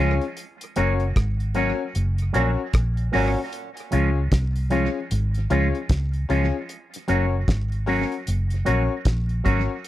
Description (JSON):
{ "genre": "roots reggae", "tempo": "76 BPM", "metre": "4/4", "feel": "swing 59% on 16ths", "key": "unclear", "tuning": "A4 = 436 Hz", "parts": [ { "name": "electric guitar with an envelope filter", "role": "accompaniment", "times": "0.0-9.6 s", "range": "F3 to Gb4", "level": "-27 LUFS", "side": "right 5 dB", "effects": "spring reverb, tape echo" }, { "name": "clear baby grand piano", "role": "stabs", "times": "0.0-9.7 s", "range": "Db4 to Db5", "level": "-26 LUFS", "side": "left 7 dB", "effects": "none" }, { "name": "vintage muted fingered electric bass", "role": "bass", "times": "0.0-9.7 s", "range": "Gb1 to Db2", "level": "-22 LUFS", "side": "equal", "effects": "none" }, { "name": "cloth-damped thuddy drum kit", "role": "drums", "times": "0.2-9.9 s", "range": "hi-hat, kick drum, rim click, snare drum", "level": "-24 LUFS", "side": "equal", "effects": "tape echo" }, { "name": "bright trombone section", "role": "second line", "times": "2.3-3.4 s", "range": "Bb2 to Db4", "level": "-31 LUFS", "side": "right 4 dB", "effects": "tape echo" } ], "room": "little or no reverb", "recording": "dry, close 1970s-style studio recording", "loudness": "-20 LUFS", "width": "side -14 dB against mid", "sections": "0.0-9.9 A section", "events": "band accent 0.4-3.5", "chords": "0.4 Gb; 3.5 Db; 6.7 Gb" }